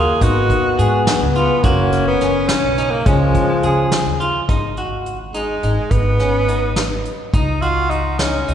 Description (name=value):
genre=progressive instrumental, band music in an uneven meter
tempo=211 BPM (eighths)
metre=5/8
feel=straight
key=G# dorian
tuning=A4 = 439 Hz
part: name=clear tenor saxophone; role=melody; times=0.0-8.5 s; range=G#3 to G#4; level=-20 LUFS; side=right 1 dB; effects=none
part: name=mellow alto saxophone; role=second line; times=0.0-4.2 s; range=E#3 to C#4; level=-21 LUFS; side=left 3 dB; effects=none
part: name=clean electric guitar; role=arpeggios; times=0.0-8.5 s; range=C#4 to G#4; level=-22 LUFS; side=left 1 dB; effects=none
part: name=upright bass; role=bass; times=0.0-8.5 s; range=F#1 to C#3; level=-20 LUFS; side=equal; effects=none
part: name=soft brush drum kit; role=drums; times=0.2-8.5 s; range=hi-hat, kick drum, snare drum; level=-21 LUFS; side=equal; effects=none
room=wet church reverb, RT60 2.8 s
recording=recorded in a church or concert hall, nothing above 10.9 kHz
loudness=-14 LUFS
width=side -9 dB against mid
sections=0.0-4.5 A section; 4.5-8.5 B section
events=none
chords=0.2 G#m; 1.6 F#5; 3.1 C#; 4.5 G#m7; 7.3 C#sus24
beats=| 0.22 0.50 0.79 1.07 1.36 | 1.64 1.93 2.21 2.50 2.78 | 3.06 3.35 3.63 3.92 4.20 | 4.49 4.77 5.06 5.34 5.63 | 5.91 6.20 6.48 6.77 7.05 | 7.34 7.62 7.91 8.19 8.48